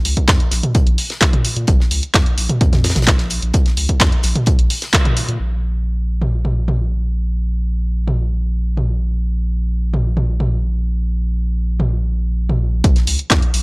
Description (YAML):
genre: acid house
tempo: 129 BPM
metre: 4/4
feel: straight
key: Bb minor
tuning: A4 = 439 Hz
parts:
  - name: saturated sub bass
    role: bass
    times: 0.1-13.6 s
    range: Bb1 to Bb2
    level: -18 LUFS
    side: equal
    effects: sidechain pumping
  - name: damped 70s drum kit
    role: drums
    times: 0.1-5.3, 12.8-13.6 s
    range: hi-hat, snare drum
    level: -27 LUFS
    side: left 1 dB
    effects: high-pass filter on hats, high-pass filter on snare, high-pass filter on room
  - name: punchy analog drum machine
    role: drums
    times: 0.1-13.6 s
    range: handclaps, hi-hat, toms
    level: -18 LUFS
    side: equal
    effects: none
  - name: electronic kick drum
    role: drums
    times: 0.2-5.0, 12.8-13.4 s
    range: none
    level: -14 LUFS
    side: equal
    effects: none
room: little or no reverb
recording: dry, gritty hardware recording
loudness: -15 LUFS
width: side -29 dB against mid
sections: 0.0-5.4 A section; 5.4-12.8 B section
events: drop 0.0-5.4; band accent 4.9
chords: none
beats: 0.28 0.75 1.21 | 1.68 2.14 2.61 3.07 | 3.54 4.00 4.47 4.93 | 5.40 5.87 6.33 6.79 | 7.26 7.72 8.19 8.65 | 9.12 9.59 10.05 10.52 | 10.98 11.45 11.91 12.38 | 12.84 13.31